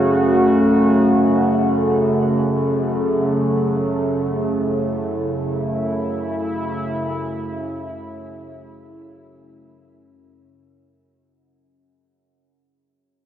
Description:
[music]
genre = dark ambient drone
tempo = free time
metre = none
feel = none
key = F# minor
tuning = A4 = 436 Hz
[part]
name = sweeping resonant pad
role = sustained chords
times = 0.0-11.6 s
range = C#3 to F#4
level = -18 LUFS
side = equal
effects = chorus, shimmer reverb
[part]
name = overtone-sweeping drone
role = drone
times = 0.0-11.7 s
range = F#2 to C#3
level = -24 LUFS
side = equal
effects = chorus, built-in reverb
[sound]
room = wet huge ambient reverb, RT60 8.2 s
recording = worn, warbling old tape, cassette tape, warbly pitch drift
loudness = -17 LUFS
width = side -10 dB against mid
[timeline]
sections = 0.0-11.6 A section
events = fade-out 0.4-11.6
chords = 0.0 F#m

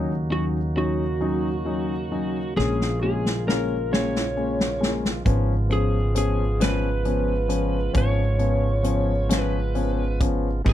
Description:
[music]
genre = six-eight pop ballad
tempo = 44 BPM (dotted quarters)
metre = 6/8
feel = straight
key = unclear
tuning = A4 = 439 Hz
[part]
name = dark grand piano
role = accompaniment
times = 0.0-10.7 s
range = E#3 to D#4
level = -27 LUFS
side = left 4 dB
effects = none
[part]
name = tonewheel organ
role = sustained chords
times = 0.0-10.7 s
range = B2 to G#4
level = -32 LUFS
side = right 3 dB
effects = stopped rotary speaker
[part]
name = upright bass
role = bass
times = 0.0-10.7 s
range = G#1 to D#2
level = -25 LUFS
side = equal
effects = none
[part]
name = electric slide guitar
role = melody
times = 0.3-10.7 s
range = F#4 to C#5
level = -28 LUFS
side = right 1 dB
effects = none
[part]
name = unplugged drum kit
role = drums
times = 2.6-10.7 s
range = crash cymbal, hi-hat, kick drum, snare drum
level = -25 LUFS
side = equal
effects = none
[sound]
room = little or no reverb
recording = none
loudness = -21 LUFS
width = side -12 dB against mid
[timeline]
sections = 0.0-10.7 A section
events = drum fill 2.6-5.3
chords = 0.0 D#m7; 2.6 A#m7; 5.3 C#7/G#

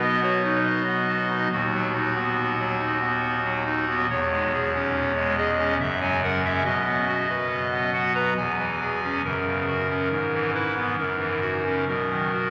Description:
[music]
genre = classical, chorale-style piece for pipe organ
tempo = 70 BPM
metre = 3/4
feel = straight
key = B major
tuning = A4 = 440 Hz
[part]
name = pipe organ, clarinet reed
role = solo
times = 0.0-12.5 s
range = D#1 to A#5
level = -24 LUFS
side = equal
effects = none
[sound]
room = wet cathedral reverb, RT60 6.4 s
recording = none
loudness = -24 LUFS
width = mono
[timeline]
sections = 0.0-12.5 A section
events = none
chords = 0.0 B; 1.5 B/D#; 4.1 C#m/E; 5.8 F#; 6.7 B; 8.4 C#m/E; 9.2 F#; 10.1 E/G#; 11.0 F#7; 11.9 B

